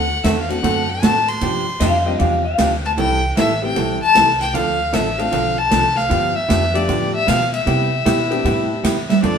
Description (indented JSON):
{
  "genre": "country, western swing",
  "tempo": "154 BPM",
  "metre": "4/4",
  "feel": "swing 65% on 8ths",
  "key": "C major",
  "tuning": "A4 = 439 Hz",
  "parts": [
    { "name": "rich fiddle", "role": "melody", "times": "0.0-9.4 s", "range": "D5 to C6", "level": "-18 LUFS", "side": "left 2 dB", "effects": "none" },
    { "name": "vintage hollow-body jazz guitar", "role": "accompaniment", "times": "0.0-9.4 s", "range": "C3 to A4", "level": "-21 LUFS", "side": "right 3 dB", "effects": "none" },
    { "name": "upright bass", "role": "bass", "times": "0.0-9.4 s", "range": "A1 to C3", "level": "-23 LUFS", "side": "equal", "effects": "none" },
    { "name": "swinging big-band drum kit", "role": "drums", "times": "0.2-9.3 s", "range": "hi-hat, ride cymbal, snare drum", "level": "-24 LUFS", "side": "left 1 dB", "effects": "none" },
    { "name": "tack piano", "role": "accompaniment", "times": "0.5-8.8 s", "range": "G3 to A4", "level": "-26 LUFS", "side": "left 3 dB", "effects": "none" },
    { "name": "clean lap steel guitar", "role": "second line", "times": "1.8-2.7, 8.1-8.7 s", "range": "E4 to F5", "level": "-21 LUFS", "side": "left 2 dB", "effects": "none" },
    { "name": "hollow-body jazz guitar", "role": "second line", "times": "9.1-9.4 s", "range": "F3 to G3", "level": "-15 LUFS", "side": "right 5 dB", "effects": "none" }
  ],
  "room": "wet studio reverb, RT60 0.8 s",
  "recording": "band playing live in one room",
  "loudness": "-15 LUFS",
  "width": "side -7 dB against mid",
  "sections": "0.0-9.4 A section",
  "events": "none",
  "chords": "0.0 D7; 1.4 G7sus4; 3.0 Am9; 4.5 Dm7; 6.1 G9; 7.7 Cmaj9"
}